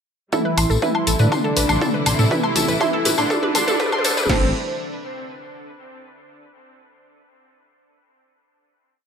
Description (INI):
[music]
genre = melodic techno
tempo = 121 BPM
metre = 4/4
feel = straight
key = A minor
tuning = A4 = 440 Hz
[part]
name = soft supersaw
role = melody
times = 0.3-4.5 s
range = D3 to E4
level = -24 LUFS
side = equal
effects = sidechain pumping, low-pass filter, tape echo
[part]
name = glassy wavetable pluck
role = second line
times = 0.3-4.5 s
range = C5 to E5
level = -29 LUFS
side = right 7 dB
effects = chorus, sidechain pumping, dub echo
[part]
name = clear symphonic string section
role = sustained chords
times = 0.3-4.5 s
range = C3 to E4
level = -29 LUFS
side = left 1 dB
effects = sidechain pumping, low-pass filter
[part]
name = analog pluck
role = arpeggios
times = 0.3-4.5 s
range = A4 to C6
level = -26 LUFS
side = equal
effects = chorus, sidechain pumping, dub echo
[part]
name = deep house drum kit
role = drums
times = 0.3-4.3 s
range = hi-hat, toms, woodblock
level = -22 LUFS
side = left 1 dB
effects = none
[part]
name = punchy analog drum machine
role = drums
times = 0.3-4.4 s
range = crash cymbal, kick drum, snare drum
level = -25 LUFS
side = equal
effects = high-pass filter on kick, high-pass filter on snare, high-pass filter on cymbals, high-pass filter on room
[part]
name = tambourine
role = percussion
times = 0.3-4.3 s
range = none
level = -27 LUFS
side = left 5 dB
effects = none
[part]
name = dark detuned saw bass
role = bass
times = 0.6-4.5 s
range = A1 to A2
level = -21 LUFS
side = equal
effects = sidechain pumping
[sound]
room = moderate recital hall reverb, RT60 1.5 s, digital ambience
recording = high-pass filter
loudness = -17 LUFS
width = side -7 dB against mid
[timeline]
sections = 0.3-4.3 build; 4.3-6.3 final chord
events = build-up 0.3-4.3; drum fill 0.3-4.3; filter sweep on supersaw synth 0.3-4.3; filter sweep on string section 0.3-4.3; filter sweep 0.3-4.3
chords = 0.3 Am7; 4.3 A5